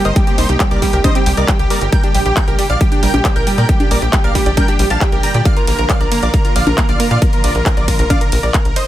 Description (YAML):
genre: uplifting trance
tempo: 136 BPM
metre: 4/4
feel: straight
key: Bb major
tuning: A4 = 441 Hz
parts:
  - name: dense compressed supersaw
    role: melody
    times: 0.0-8.9 s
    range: Eb4 to Bb5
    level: -19 LUFS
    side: right 1 dB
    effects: cassette tape, sidechain pumping, digital delay
  - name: plucky unison lead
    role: second line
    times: 0.0-7.2 s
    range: G5 to Bb6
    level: -26 LUFS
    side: equal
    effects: analog chorus, sidechain pumping, digital delay
  - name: muted studio string section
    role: sustained chords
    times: 0.0-8.9 s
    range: Bb2 to G4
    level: -25 LUFS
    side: left 1 dB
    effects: sidechain pumping
  - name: wide unison pluck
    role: arpeggios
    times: 0.1-7.2 s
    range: G3 to F5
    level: -22 LUFS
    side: right 2 dB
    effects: vintage 12-bit sampler grit, sidechain pumping, digital delay
  - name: tight sequencer bass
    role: bass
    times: 0.1-8.7 s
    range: G1 to Bb2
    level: -17 LUFS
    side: equal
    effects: tube saturation, sidechain pumping
  - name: big-room dance drum kit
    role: drums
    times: 0.1-8.9 s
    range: congas, handclaps, hi-hat, ride cymbal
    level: -21 LUFS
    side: equal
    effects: sidechain pumping on hats, sidechain pumping on perc, sidechain pumping on cymbals
  - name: electronic kick drum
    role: drums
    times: 0.2-8.6 s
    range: none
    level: -15 LUFS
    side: equal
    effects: none
room: little or no reverb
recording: none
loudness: -12 LUFS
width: side -13 dB against mid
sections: 0.0-8.9 A section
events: none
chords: 0.0 Cm7; 1.9 Gm/Bb; 5.5 Bb